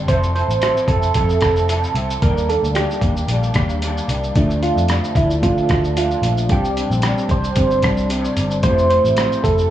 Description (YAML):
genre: indie pop, bedroom pop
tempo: 112 BPM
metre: 4/4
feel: swing 55% on 16ths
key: unclear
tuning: A4 = 440 Hz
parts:
  - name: electric guitar through a small old amp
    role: accompaniment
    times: 0.0-9.7 s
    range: C3 to A4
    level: -25 LUFS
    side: left 2 dB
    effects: ensemble chorus, vibrato effect
  - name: vintage muted picked electric bass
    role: bass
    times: 0.0-9.7 s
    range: F1 to D3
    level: -20 LUFS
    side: equal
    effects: tube saturation
  - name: soft electric-piano-like synth keys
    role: melody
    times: 0.1-9.7 s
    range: D4 to C5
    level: -20 LUFS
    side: right 3 dB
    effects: analog chorus, tape echo
  - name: boom bap sampler-style drum kit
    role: drums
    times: 0.1-9.7 s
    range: hi-hat, kick drum, rim click, shaker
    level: -22 LUFS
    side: equal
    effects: none
  - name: reed electric piano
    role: accompaniment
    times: 4.4-9.7 s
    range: G3 to A4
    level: -25 LUFS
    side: right 1 dB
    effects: cassette tape
room: moderate spring reverb, RT60 1.6 s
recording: worn, warbling old tape, cassette tape, warbly pitch drift, small room ambience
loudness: -15 LUFS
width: side -12 dB against mid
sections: 0.0-9.7 A section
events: none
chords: 0.1 Fmaj7; 2.2 Ebmaj7; 4.4 Dm; 6.5 Csus2; 8.6 Fmaj7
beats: | 0.08 0.61 1.15 1.68 | 2.22 2.75 3.29 3.82 | 4.36 4.89 5.43 5.96 | 6.50 7.04 7.57 8.11 | 8.64 9.18